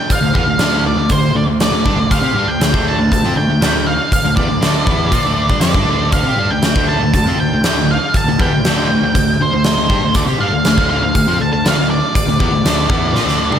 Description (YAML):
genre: classic rock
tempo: 120 BPM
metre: 4/4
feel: straight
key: D dorian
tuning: A4 = 442 Hz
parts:
  - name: octave-fuzz lead guitar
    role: melody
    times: 0.0-13.6 s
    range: C5 to A5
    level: -18 LUFS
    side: right 1 dB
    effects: distortion
  - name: big rock drum kit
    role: drums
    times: 0.1-13.6 s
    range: hi-hat, kick drum, snare drum, toms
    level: -17 LUFS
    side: equal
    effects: none
  - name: sludgy distorted guitar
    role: riff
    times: 0.2-13.6 s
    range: D3 to G4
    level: -18 LUFS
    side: equal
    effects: overdrive
  - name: growling picked electric bass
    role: bass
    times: 0.2-13.6 s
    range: D2 to C3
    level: -20 LUFS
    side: equal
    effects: overdrive
room: moderate lush hall reverb, RT60 2.2 s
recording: big arena sound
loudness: -12 LUFS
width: side -9 dB against mid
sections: 0.0-13.6 A section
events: drum fill 13.1-13.6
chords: 0.0 Dm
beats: | 0.11 0.61 1.11 1.61 | 2.11 2.61 3.11 3.61 | 4.12 4.62 5.12 5.62 | 6.13 6.63 7.13 7.63 | 8.14 8.64 9.14 9.64 | 10.14 10.64 11.14 11.64 | 12.14 12.64 13.14